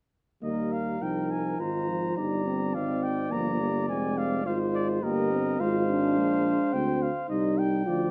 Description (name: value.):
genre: classical, brass quintet.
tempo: 105 BPM.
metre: 3/4.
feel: straight.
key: Eb major.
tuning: A4 = 436 Hz.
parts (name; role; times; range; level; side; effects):
warm cornet; melody; 0.4-8.1 s; D5 to Bb5; -36 LUFS; equal; none.
mellow trumpet; second line; 0.4-8.1 s; Bb4 to D5; -38 LUFS; equal; none.
dark French horn; accompaniment; 0.4-8.1 s; Bb3 to G4; -31 LUFS; equal; none.
mellow euphonium; accompaniment; 0.4-8.1 s; Eb3 to C4; -36 LUFS; equal; none.
warm tuba; bass; 0.4-8.1 s; F1 to Eb2; -34 LUFS; equal; none.
room: moderate recital hall reverb, RT60 1.3 s.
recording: close, detailed microphones.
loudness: -28 LUFS.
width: mono.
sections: 0.4-8.1 A section.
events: none.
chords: 0.4 Eb; 2.2 Eb/G; 3.9 Fm; 5.6 Fm/Ab; 7.3 F7(no3)/C.